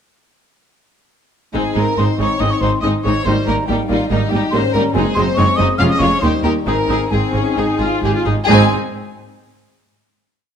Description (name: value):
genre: quick classical-period movement for symphony orchestra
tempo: 129-143 BPM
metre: 4/4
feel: rubato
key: Ab major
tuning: A4 = 439 Hz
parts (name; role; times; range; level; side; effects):
- rich chamber violin section; melody; 1.5-8.7 s; Eb4 to Ab4; -24 LUFS; left 5 dB; none
- mellow hollow concert flute; second line; 1.5-8.7 s; Eb5 to F6; -22 LUFS; left 1 dB; none
- rich chamber violin section; second line; 1.5-8.7 s; Eb4 to Ab5; -23 LUFS; left 3 dB; none
- rich symphonic viola section; accompaniment; 1.5-8.7 s; G3 to G4; -21 LUFS; right 2 dB; none
- dark French horn section; sustained chords; 1.5-8.7 s; G3 to Eb4; -22 LUFS; left 4 dB; none
- clear chamber cello section; bass; 1.5-8.7 s; Eb2 to Ab2; -21 LUFS; right 2 dB; none
- clear studio double bass section; bass; 1.5-8.7 s; F1 to Eb2; -21 LUFS; right 3 dB; none
room: moderate recital hall reverb, RT60 1.4 s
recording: none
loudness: -14 LUFS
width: side -8 dB against mid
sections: 1.5-8.5 theme; 8.5-10.3 final chord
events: none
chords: 1.5 Ab; 3.3 Eb/Ab; 5.0 Ab7/Gb; 5.8 Db/F; 6.2 Eb; 6.7 Ab